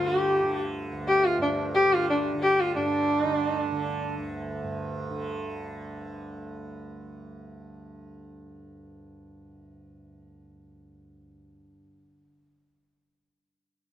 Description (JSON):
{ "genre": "indian classical, Hindustani", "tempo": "178 BPM", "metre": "4/4", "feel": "straight", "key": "unclear", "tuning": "A4 = 439 Hz", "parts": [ { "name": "warm sarangi", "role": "melody", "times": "0.0-4.1 s", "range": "D4 to G4", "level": "-24 LUFS", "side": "left 1 dB", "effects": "none" }, { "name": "hand-pumped harmonium", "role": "second line", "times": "0.0-4.2 s", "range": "D4 to G4", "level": "-32 LUFS", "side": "right 9 dB", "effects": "none" }, { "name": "tanpura", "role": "drone", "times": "0.0-12.3 s", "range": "D2 to D3", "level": "-36 LUFS", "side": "right 2 dB", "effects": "none" } ], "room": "moderate studio reverb, RT60 0.6 s", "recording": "none", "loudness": "-24 LUFS", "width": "side -11 dB against mid", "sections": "0.0-2.8 A section; 2.8-5.4 B section", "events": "none", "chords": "none" }